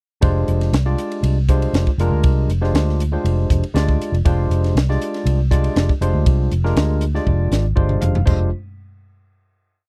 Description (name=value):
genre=electric jazz fusion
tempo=120 BPM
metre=4/4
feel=straight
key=F dorian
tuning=A4 = 441 Hz
part: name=barky tine electric piano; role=accompaniment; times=0.2-8.5 s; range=Ab3 to F5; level=-26 LUFS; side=equal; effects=subtle chorus
part: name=vintage muted fingered electric bass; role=bass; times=0.2-8.5 s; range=F1 to D2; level=-20 LUFS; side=equal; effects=none
part: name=crisp fusion drum kit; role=drums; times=0.2-8.4 s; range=crash cymbal, hi-hat, kick drum, ride cymbal, snare drum, toms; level=-21 LUFS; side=equal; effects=none
room=little or no reverb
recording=dry, close 1970s-style studio recording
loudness=-18 LUFS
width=mono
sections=0.2-8.3 groove; 8.3-9.9 final chord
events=drum fill 7.3-8.3; tine electric piano fill 7.5-8.3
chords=0.2 Fm69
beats=| 0.23 0.73 1.23 1.74 | 2.24 2.74 3.24 3.75 | 4.25 4.75 5.25 5.75 | 6.25 6.75 7.26 7.76 | 8.26